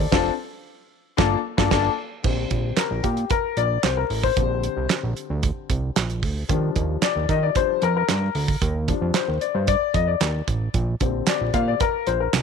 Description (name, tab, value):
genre	early-eighties boogie funk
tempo	113 BPM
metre	4/4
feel	straight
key	Bb major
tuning	A4 = 440 Hz
part	dark baby grand piano	accompaniment	0.0-12.4 s	D3 to F5	-24 LUFS	left 14 dB	none
part	fat analog bass	bass	0.0-12.4 s	F1 to Eb3	-24 LUFS	right 2 dB	none
part	damped 70s drum kit	drums	0.1-12.4 s	crash cymbal, handclaps, hi-hat, kick drum, snare drum	-24 LUFS	right 5 dB	none
room	little or no reverb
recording	1960s-style stereo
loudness	-20 LUFS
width	side -6 dB against mid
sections	0.0-2.2 A section; 2.2-12.4 B section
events	band accent 0.1-2.2; grand piano solo 2.2-12.4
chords	0.1 Dm7/F; 0.9 Gm9; 2.2 Bb6; 6.5 Ebmaj7; 10.7 Bb6